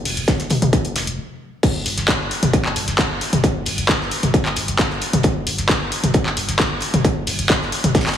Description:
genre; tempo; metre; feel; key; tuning
driving peak-time techno; 133 BPM; 4/4; straight; unclear; A4 = 440 Hz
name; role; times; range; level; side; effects
saturated sub bass; bass; 0.0-8.2 s; F1 to G1; -29 LUFS; equal; tube saturation, sidechain pumping, low-pass filter
damped 70s drum kit; drums; 0.1-8.2 s; hi-hat, snare drum; -30 LUFS; right 4 dB; high-pass filter on hats, high-pass filter on snare, high-pass filter on room
punchy analog drum machine; drums; 0.1-8.2 s; crash cymbal, handclaps, hi-hat, toms; -19 LUFS; left 1 dB; overdrive, sidechain pumping on hats, sidechain pumping on toms, sidechain pumping on cymbals
electronic kick drum; drums; 0.3-8.0 s; none; -20 LUFS; equal; distortion
room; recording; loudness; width
moderate lush hall reverb, RT60 1.5 s; heavily compressed radio sound, multiband compression, studio reverb; -17 LUFS; side -9 dB against mid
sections
0.0-1.6 A section; 1.6-8.2 B section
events
stop 1.2-1.6; drop 1.6-8.2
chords
none

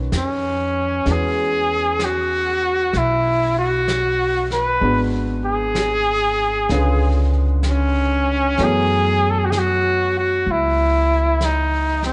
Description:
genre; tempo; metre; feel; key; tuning
jazz ballad; 64 BPM; 4/4; swing 66% on 8ths; unclear; A4 = 441 Hz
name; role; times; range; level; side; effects
warm grand piano; accompaniment; 0.0-12.1 s; D3 to C#5; -29 LUFS; equal; none
upright bass; bass; 0.0-12.1 s; G#1 to F#2; -24 LUFS; equal; none
vintage brush drum kit; drums; 0.1-12.1 s; brushed snare drum, hi-hat, snare drum; -34 LUFS; equal; none
brilliant trumpet; melody; 0.2-12.1 s; C#4 to B4; -21 LUFS; equal; none
room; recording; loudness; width
moderate echo chamber reverb, RT60 2.5 s; heard from further back in the room, nothing above 10.3 kHz; -19 LUFS; mono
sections
0.0-12.1 A section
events
none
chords
0.0 Badd9; 1.1 E69; 4.8 G#m7b5; 6.7 C#7b9; 8.6 F#m7

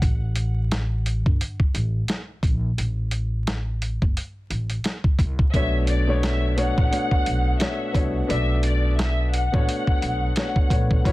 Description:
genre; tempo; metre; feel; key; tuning
hip hop, boom-bap hip-hop; 87 BPM; 4/4; swing 57% on 16ths; B minor; A4 = 440 Hz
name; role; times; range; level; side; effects
upright bass; bass; 0.0-11.1 s; F#1 to C2; -23 LUFS; equal; none
dusty soul sampler-style drum kit; drums; 0.0-11.1 s; hi-hat, kick drum, snare drum; -22 LUFS; equal; vintage 12-bit sampler grit
warm studio violin section; melody; 5.5-10.7 s; D5 to F#5; -29 LUFS; left 1 dB; high-pass filter, low-pass filter, plate reverb, ping-pong delay
dark upright piano; accompaniment; 5.5-11.1 s; A2 to D5; -26 LUFS; left 2 dB; cassette tape, high-pass filter, low-pass filter, plate reverb
room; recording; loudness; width
little or no reverb; dense, heavily limited modern master, vinyl crackle, faint mains hum; -20 LUFS; side -18 dB against mid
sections
0.0-11.1 A section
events
none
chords
0.0 N.C.; 5.5 Bm9

